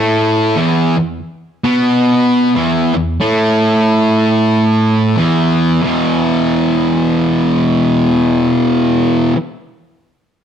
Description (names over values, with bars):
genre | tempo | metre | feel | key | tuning
metal | 91 BPM | 4/4 | swing 61% on 8ths | unclear | A4 = 440 Hz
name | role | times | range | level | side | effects
fuzz guitar | solo | 0.0-9.4 s | E2 to B3 | -11 LUFS | equal | distortion
room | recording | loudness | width
light reverb, digital ambience | dark, warm production | -11 LUFS | side -8 dB against mid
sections
0.0-5.8 A section; 5.8-8.5 B section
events
none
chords
0.0 E5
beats
| 0.57 1.23 1.89 2.55 | 3.20 3.86 4.52 5.18 | 5.84 6.49 7.15 7.81